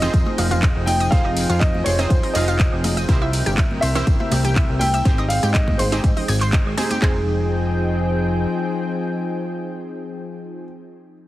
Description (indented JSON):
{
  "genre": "progressive house",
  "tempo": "122 BPM",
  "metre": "4/4",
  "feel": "straight",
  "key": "F minor",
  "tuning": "A4 = 441 Hz",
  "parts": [
    { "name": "dark grand piano", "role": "melody", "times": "0.0-10.6 s", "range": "Ab4 to G5", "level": "-26 LUFS", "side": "equal", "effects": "sidechain pumping, tape echo" },
    { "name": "lush unison pad", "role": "sustained chords", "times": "0.0-10.6 s", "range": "C3 to G5", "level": "-25 LUFS", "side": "left 2 dB", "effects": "chorus, sidechain pumping" },
    { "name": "analog pluck", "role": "arpeggios", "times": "0.0-7.2 s", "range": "Eb4 to Ab6", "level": "-28 LUFS", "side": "equal", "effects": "chorus, sidechain pumping, dub echo" },
    { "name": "wide unison pluck", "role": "stabs", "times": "0.0-10.6 s", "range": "C4 to F5", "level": "-29 LUFS", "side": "right 3 dB", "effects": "sidechain pumping, dub echo" },
    { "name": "plucky analog bass", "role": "bass", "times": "0.0-8.5 s", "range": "F1 to Ab2", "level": "-22 LUFS", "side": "equal", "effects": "sidechain pumping" },
    { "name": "house drum kit", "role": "drums", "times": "0.0-7.0 s", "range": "handclaps, hi-hat, ride cymbal, tambourine", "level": "-28 LUFS", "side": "equal", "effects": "none" },
    { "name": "congas and woodblock", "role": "percussion", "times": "0.0-7.0 s", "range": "none", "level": "-30 LUFS", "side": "right 2 dB", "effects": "sidechain pumping on perc" },
    { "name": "house drum kit", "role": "drums", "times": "0.1-7.1 s", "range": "handclaps, kick drum", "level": "-18 LUFS", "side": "equal", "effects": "none" }
  ],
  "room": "light reverb, digital ambience",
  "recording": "heavily compressed radio sound",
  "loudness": "-17 LUFS",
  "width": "side -15 dB against mid",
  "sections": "0.0-7.0 A section; 7.0-11.0 B section",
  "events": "drop 0.0-7.0",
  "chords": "0.0 Fm7; 3.1 C7; 5.1 Abmaj7; 7.0 Fm7",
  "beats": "0.14 0.63 | 1.12 1.61 2.10 2.60 | 3.09 3.58 4.07 4.56 | 5.05 5.55 6.04 6.53 | 7.02 7.51 8.01 8.50 | 8.99 9.48 9.97 10.46"
}